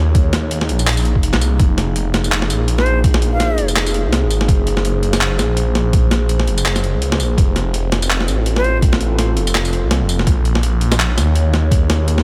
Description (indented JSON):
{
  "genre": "half-time drum and bass",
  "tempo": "166 BPM",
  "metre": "4/4",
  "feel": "swing 57% on 16ths, half-time",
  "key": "F phrygian",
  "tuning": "A4 = 439 Hz",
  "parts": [
    { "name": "dark analog pad", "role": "sustained chords", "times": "0.0-12.2 s", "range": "Bb3 to Db5", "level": "-26 LUFS", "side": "equal", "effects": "chorus, sidechain pumping" },
    { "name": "phased detuned saw bass", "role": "bass", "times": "0.0-12.2 s", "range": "F1 to Eb2", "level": "-19 LUFS", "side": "equal", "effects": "phaser" },
    { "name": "boom bap sampler-style drum kit", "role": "drums", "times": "0.1-12.2 s", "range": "handclaps, hi-hat, snare drum, tambourine", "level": "-22 LUFS", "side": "equal", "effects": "overdrive" },
    { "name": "electronic kick drum", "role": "drums", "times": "0.1-11.8 s", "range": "none", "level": "-17 LUFS", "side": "equal", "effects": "overdrive" },
    { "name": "breathy bright jazz flute", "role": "melody", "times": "2.8-3.7, 8.6-8.8 s", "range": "C5 to F5", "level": "-25 LUFS", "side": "equal", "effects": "dub echo" }
  ],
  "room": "digital ambience",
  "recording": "none",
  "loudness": "-16 LUFS",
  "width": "mono",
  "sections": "0.0-12.2 A section",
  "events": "none",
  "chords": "0.0 Bbm; 1.6 Fm; 4.5 Gbadd9; 7.4 F; 10.3 Bbm",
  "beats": "| 0.15 0.51 0.87 1.23 | 1.59 1.96 2.32 2.68 | 3.04 3.40 3.76 4.12 | 4.49 4.85 5.21 5.57 | 5.93 6.29 6.66 7.02 | 7.38 7.74 8.10 8.46 | 8.82 9.19 9.55 9.91 | 10.27 10.63 10.99 11.35 | 11.72 12.08"
}